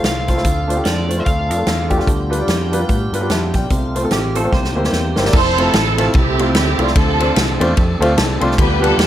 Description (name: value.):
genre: uptempo gospel.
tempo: 148 BPM.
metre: 4/4.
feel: swing 59% on 8ths.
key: unclear.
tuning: A4 = 437 Hz.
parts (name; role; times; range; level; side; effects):
overdriven slide guitar; melody; 0.0-1.9 s; D5 to F5; -23 LUFS; left 1 dB; none.
warm grand piano; accompaniment; 0.0-9.1 s; C3 to C6; -20 LUFS; equal; none.
tonewheel organ; sustained chords; 0.0-9.1 s; C3 to A4; -24 LUFS; right 1 dB; slow rotary speaker, overdrive.
fingered electric bass; bass; 0.0-9.1 s; F1 to A2; -20 LUFS; equal; none.
swinging big-band drum kit; drums; 0.0-9.1 s; crash cymbal, hi-hat, kick drum, ride cymbal, snare drum; -18 LUFS; equal; none.
clean electric guitar; second line; 4.1-5.1 s; G4 to C5; -25 LUFS; right 4 dB; ensemble chorus.
warm studio string section; melody; 5.3-9.1 s; C4 to C5; -18 LUFS; right 2 dB; none.
room: moderate large studio reverb, RT60 0.8 s.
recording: none.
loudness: -14 LUFS.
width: side -12 dB against mid.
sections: 0.0-5.3 A section; 5.3-9.1 B section.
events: drum fill 4.5-5.3; grand piano fill 7.8-8.6.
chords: 0.5 Dm7; 2.1 G7/D; 3.7 F/C; 4.5 C7; 5.3 Fmaj7; 7.0 Dm7.